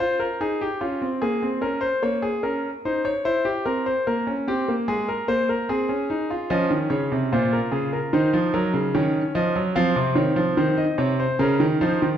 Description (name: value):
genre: classical, baroque-style 3-part fugue for grand piano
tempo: 74 BPM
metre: 4/4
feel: straight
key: Bb minor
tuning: A4 = 440 Hz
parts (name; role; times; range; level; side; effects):
- clear concert grand piano; solo; 0.0-12.2 s; Bb2 to F5; -20 LUFS; equal; none
room: wet recital hall reverb, RT60 1.7 s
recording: dark, warm production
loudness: -20 LUFS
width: side -9 dB against mid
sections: 0.0-12.2 A section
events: none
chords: 0.0 Fm; 1.6 Bbm; 3.3 C7; 4.9 Fm/Ab; 6.5 Bbm; 8.1 Ebm; 9.8 F5; 11.4 Bbm/Db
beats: | 0.01 0.82 1.63 2.44 | 3.25 4.07 4.88 5.69 | 6.51 7.32 8.14 8.95 | 9.77 10.59 11.40